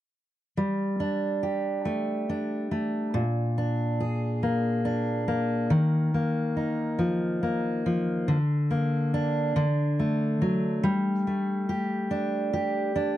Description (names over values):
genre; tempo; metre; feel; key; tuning
pop; 47 BPM (dotted quarters); 6/8; straight; G minor; A4 = 440 Hz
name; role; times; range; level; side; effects
fingerpicked steel-string acoustic guitar; solo; 0.6-13.2 s; Bb2 to Ab4; -24 LUFS; equal; none
room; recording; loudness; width
light reverb; dry, close 1970s-style studio recording; -24 LUFS; side -13 dB against mid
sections
0.6-10.8 A section; 10.8-13.2 B section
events
none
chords
0.6 Gsus2; 3.1 Bb7; 5.7 Ebsus2; 8.3 Bb/D; 9.6 D; 10.8 Gsus2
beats
| 0.58 1.86 | 3.14 4.43 | 5.71 6.99 | 8.28 9.56 | 10.84 12.12